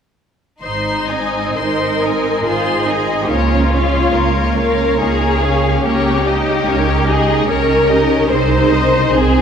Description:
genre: classical, slow romantic movement for string orchestra.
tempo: 61-75 BPM.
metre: 3/4.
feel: rubato.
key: Ab major.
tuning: A4 = 439 Hz.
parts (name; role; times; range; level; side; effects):
rich chamber violin section; melody; 0.6-9.4 s; C5 to C6; -22 LUFS; left 6 dB; none.
warm symphonic violin section; second line; 0.6-9.4 s; Eb4 to C5; -17 LUFS; left 2 dB; none.
rich symphonic viola section; accompaniment; 0.6-9.4 s; Bb3 to Eb5; -20 LUFS; right 1 dB; none.
rich symphonic double bass section; bass; 0.6-9.4 s; Ab1 to Db2; -19 LUFS; right 2 dB; none.
warm studio cello section; bass; 1.6-9.4 s; Bb3 to F4; -20 LUFS; right 4 dB; none.
room: wet cathedral reverb, RT60 6.2 s.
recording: recorded in a church or concert hall.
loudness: -13 LUFS.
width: side -7 dB against mid.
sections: 0.6-9.4 A section.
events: none.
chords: 0.6 Ab; 3.3 Bbm/Db; 5.8 Eb7/Db; 8.3 Ab/C.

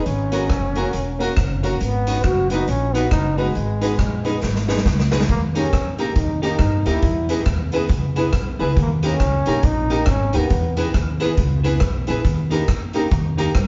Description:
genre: ska.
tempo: 138 BPM.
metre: 4/4.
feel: swing 61% on 8ths.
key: unclear.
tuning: A4 = 440 Hz.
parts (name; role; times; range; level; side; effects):
breathy trombone; melody; 0.0-10.8 s; G#3 to F#4; -27 LUFS; equal; none.
upright bass; bass; 0.1-13.7 s; E1 to G2; -25 LUFS; equal; none.
street-band drum kit; drums; 0.1-13.7 s; hi-hat, kick drum, rim click, snare drum; -24 LUFS; equal; none.
clean electric guitar; accompaniment; 0.3-13.5 s; C#4 to B4; -29 LUFS; equal; tape echo.
warm upright piano; stabs; 0.3-13.5 s; A#3 to B4; -29 LUFS; equal; none.
room: moderate stone room reverb, RT60 1.4 s.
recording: band playing live in one room, nothing above 7.6 kHz.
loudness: -20 LUFS.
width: mono.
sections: 0.0-5.3 A section; 5.3-13.7 B section.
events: drum fill 4.4-5.3.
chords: 0.1 F#; 1.8 B; 3.5 G#m; 5.3 D#; 7.0 E; 8.8 D#; 10.5 E; 12.2 D#.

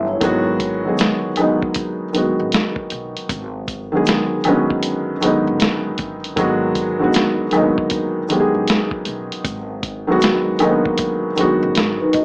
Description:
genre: lo-fi hip hop.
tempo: 78 BPM.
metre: 4/4.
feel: swing 65% on 16ths.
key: G# minor.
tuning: A4 = 440 Hz.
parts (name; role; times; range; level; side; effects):
vibraphone with soft mallets; second line; 0.0-0.4, 12.0-12.2 s; D#4 to D#5; -21 LUFS; left 1 dB; tape echo.
felt-muted upright piano; accompaniment; 0.0-12.2 s; D#3 to G#4; -17 LUFS; equal; cassette tape.
upright bass; bass; 0.0-12.2 s; F#1 to B1; -30 LUFS; equal; none.
lo-fi sampler-style drum kit; drums; 0.2-12.2 s; hi-hat, kick drum, snare drum; -20 LUFS; equal; none.
tube shaker and woodblock; percussion; 0.2-12.2 s; none; -27 LUFS; left 2 dB; none.
room: moderate studio reverb, RT60 0.6 s.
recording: small speaker sound.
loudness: -16 LUFS.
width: side -30 dB against mid.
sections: 0.0-12.2 A section.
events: break 0.0.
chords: 0.2 G#m7.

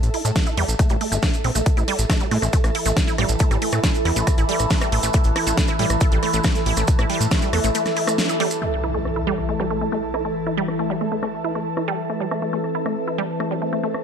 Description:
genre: psychedelic trance.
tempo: 138 BPM.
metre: 4/4.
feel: straight.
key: A minor.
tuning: A4 = 441 Hz.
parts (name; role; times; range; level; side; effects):
fat analog bass; bass; 0.0-7.7 s; G1 to A2; -22 LUFS; equal; none.
big-room dance drum kit; drums; 0.0-14.0 s; crash cymbal, hi-hat, rim click, snare drum; -26 LUFS; equal; low-pass filter on hats, low-pass filter on snare, low-pass filter on cymbals.
maracas; percussion; 0.0-8.6 s; none; -30 LUFS; right 6 dB; none.
ethereal airy pad; texture; 0.0-14.0 s; A4 to A5; -27 LUFS; right 2 dB; ensemble chorus, built-in reverb, phaser, sidechain pumping.
wide unison pluck; riff; 0.1-13.9 s; G3 to E4; -26 LUFS; right 2 dB; auto-pan, sidechain pumping, digital delay.
electronic kick drum; drums; 0.4-7.4 s; none; -20 LUFS; equal; none.
overtone-sweeping drone; sustained chords; 2.3-14.0 s; E3 to E4; -26 LUFS; left 1 dB; chorus, built-in reverb, sidechain pumping.
impact; sound effects; 8.6-10.4 s; none; -30 LUFS; equal; none.
room: light reverb, digital ambience.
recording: none.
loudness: -18 LUFS.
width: side -7 dB against mid.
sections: 0.0-8.6 A section; 8.6-14.0 B section.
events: band accent 8.2; impact 8.6-10.4.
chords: 0.0 A5.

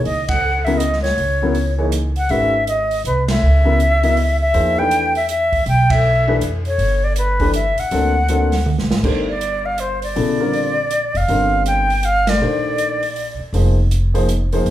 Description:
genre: modal jazz.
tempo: 160 BPM.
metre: 3/4.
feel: swing 64% on 8ths.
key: G minor from 9.0 s.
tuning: A4 = 442 Hz.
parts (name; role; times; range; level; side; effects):
bright reedy concert flute; melody; 0.0-13.4 s; B4 to G5; -18 LUFS; equal; none.
warm baby grand piano; accompaniment; 0.0-14.7 s; C#3 to D#5; -21 LUFS; left 2 dB; none.
upright bass; bass; 0.0-14.7 s; F1 to E#2; -19 LUFS; equal; none.
open jazz drum kit; drums; 0.1-14.7 s; crash cymbal, hi-hat, kick drum, ride cymbal, snare drum, toms; -25 LUFS; right 2 dB; none.
room: moderate large studio reverb, RT60 0.7 s.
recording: band playing live in one room.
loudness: -15 LUFS.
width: side -13 dB against mid.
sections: 0.0-9.0 A section; 9.0-14.7 B section.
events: band accent 0.2, 3.2, 5.9, 12.2; drum fill 8.7-9.0.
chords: 0.0 C#m7; 4.5 Em7; 7.9 D7b13; 9.0 Gm9; 13.5 Fm7.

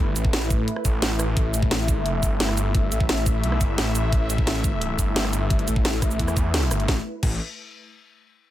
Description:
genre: dark technical drum and bass.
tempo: 174 BPM.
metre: 4/4.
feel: straight.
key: unclear.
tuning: A4 = 439 Hz.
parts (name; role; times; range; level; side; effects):
sweeping resonant pad; sustained chords; 0.0-7.0 s; A3 to E5; -29 LUFS; left 1 dB; chorus, sidechain pumping.
snarling distorted saw bass; bass; 0.0-7.4 s; G1 to E2; -24 LUFS; equal; overdrive, sidechain pumping.
drum and bass drum kit; drums; 0.2-7.3 s; cabasa, crash cymbal, hi-hat, rim click, snare drum; -26 LUFS; equal; none.
electronic kick drum; drums; 0.2-7.3 s; none; -23 LUFS; equal; none.
room: little or no reverb.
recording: none.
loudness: -20 LUFS.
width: side -14 dB against mid.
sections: 0.0-6.9 A section; 6.9-8.3 B section.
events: drop 0.0-6.9; band accent 6.5.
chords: 0.0 A5.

